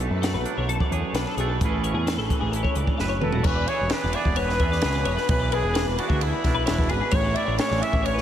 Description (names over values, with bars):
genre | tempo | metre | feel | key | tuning
math rock and midwest emo | 130 BPM | 4/4 | straight | unclear | A4 = 438 Hz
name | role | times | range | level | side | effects
twangy electric guitar | accompaniment | 0.0-8.2 s | F#2 to B4 | -30 LUFS | right 6 dB | warbly pitch drift
twelve-string electric guitar | arpeggios | 0.0-8.2 s | F#4 to E5 | -29 LUFS | left 5 dB | ensemble chorus, tape echo
growling picked electric bass | bass | 0.0-8.2 s | E1 to F#2 | -26 LUFS | equal | overdrive
compact cocktail drum kit | drums | 0.2-8.2 s | crash cymbal, hi-hat, kick drum, ride cymbal, snare drum, toms | -26 LUFS | equal | none
clear trumpet | melody | 3.2-8.2 s | E4 to E5 | -27 LUFS | equal | tape echo
room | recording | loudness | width
moderate huge ambient reverb, RT60 8.1 s | dreamy mix soaked in reverb | -21 LUFS | side -10 dB against mid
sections
0.0-3.4 A section; 3.4-8.2 B section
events
drum fill 3.0-3.4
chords
0.0 Bm7; 1.6 Amaj7; 3.4 E7; 7.1 A